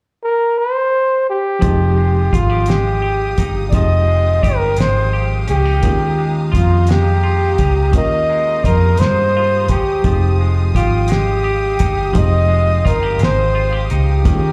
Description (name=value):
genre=slow six-eight R&B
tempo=57 BPM (dotted quarters)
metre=6/8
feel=straight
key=F minor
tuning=A4 = 441 Hz
part: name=breathy flugelhorn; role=melody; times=0.2-14.5 s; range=F4 to Eb5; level=-20 LUFS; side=equal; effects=slapback echo
part: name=semi-hollow electric guitar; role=second line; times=1.6-14.5 s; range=Eb3 to G4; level=-29 LUFS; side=equal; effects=spring reverb, slapback echo
part: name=reed electric piano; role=accompaniment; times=1.6-14.5 s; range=Eb3 to Bb4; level=-28 LUFS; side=equal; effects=medium tremolo
part: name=rich studio string section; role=sustained chords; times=1.6-14.5 s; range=Db4 to Eb6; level=-33 LUFS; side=equal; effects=none
part: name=vintage muted fingered electric bass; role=bass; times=1.6-14.5 s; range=F1 to G2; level=-18 LUFS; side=equal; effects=none
part: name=cloth-damped thuddy drum kit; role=drums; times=1.6-14.4 s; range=hi-hat, kick drum, snare drum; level=-19 LUFS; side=equal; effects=none
room=small room ambience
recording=live gig heard through the venue's PA, club reverb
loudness=-15 LUFS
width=mono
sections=0.0-1.6 A section; 1.6-14.5 B section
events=none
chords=0.0 N.C.; 1.6 Fm9; 5.8 Eb9sus4; 10.0 Fm9